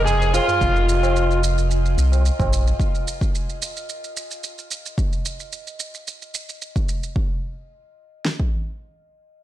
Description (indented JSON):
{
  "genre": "organic downtempo",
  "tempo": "110 BPM",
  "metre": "4/4",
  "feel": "swing 53% on 16ths",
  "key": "F minor",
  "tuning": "A4 = 440 Hz",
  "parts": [
    { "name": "overdriven slide guitar", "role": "melody", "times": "0.0-1.4 s", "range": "F4 to Ab4", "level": "-23 LUFS", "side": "equal", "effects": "tape echo" },
    { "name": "santur", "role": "arpeggios", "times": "0.0-1.2 s", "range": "C4 to Eb5", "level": "-42 LUFS", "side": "right 1 dB", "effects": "none" },
    { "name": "round analog bass", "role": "bass", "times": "0.0-2.7 s", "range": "F1 to C2", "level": "-19 LUFS", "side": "equal", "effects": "tube saturation, sidechain pumping" },
    { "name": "bronze singing bowl", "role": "texture", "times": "0.0-2.8 s", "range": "Eb5", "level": "-35 LUFS", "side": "left 2 dB", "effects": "none" },
    { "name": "shaker", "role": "drums", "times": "0.1-7.1 s", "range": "none", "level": "-31 LUFS", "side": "right 6 dB", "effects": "studio reverb" },
    { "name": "tabla", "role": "percussion", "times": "0.2-2.8 s", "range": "none", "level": "-29 LUFS", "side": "right 5 dB", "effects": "none" },
    { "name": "deep house drum kit", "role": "drums", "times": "0.6-8.5 s", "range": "kick drum, snare drum", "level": "-22 LUFS", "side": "equal", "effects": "overdrive, studio reverb" }
  ],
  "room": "light reverb, digital ambience",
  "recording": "blown-out, overdriven recording, overdrive",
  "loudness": "-20 LUFS",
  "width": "side -13 dB against mid",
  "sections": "0.0-7.2 A section; 7.2-9.4 B section",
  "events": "filter sweep on analog synth bass 0.0-2.8",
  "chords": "0.0 F7(no3); 2.8 N.C."
}